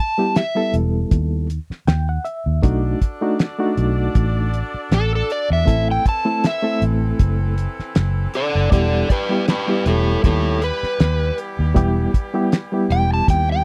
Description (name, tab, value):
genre	straight-eighth soul blues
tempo	79 BPM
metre	4/4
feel	swing 55% on 16ths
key	E minor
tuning	A4 = 440 Hz
part	overdriven slide guitar	melody	0.0-13.6 s	E4 to A5	-23 LUFS	equal	none
part	barky reed electric piano	accompaniment	0.2-13.6 s	G3 to G5	-24 LUFS	equal	fast tremolo
part	cloth-damped thuddy drum kit	drums	0.4-13.5 s	hi-hat, kick drum, snare drum	-20 LUFS	equal	none
part	vintage muted fingered electric bass	bass	0.7-13.6 s	E1 to E2	-22 LUFS	equal	none
part	brilliant horn section	sustained chords	2.6-13.6 s	E3 to D5	-34 LUFS	equal	none
room	little or no reverb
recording	dry, close 1970s-style studio recording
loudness	-19 LUFS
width	mono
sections	0.0-13.6 A section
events	electric slide guitar solo 0.0-13.6; reed electric piano fill 1.5-2.6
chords	0.0 Em; 2.6 B7#9; 5.7 Am; 8.7 Em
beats	0.36 1.12 1.88 | 2.64 3.40 4.16 4.92 | 5.68 6.44 7.20 7.96 | 8.72 9.48 10.24 11.00 | 11.76 12.52 13.28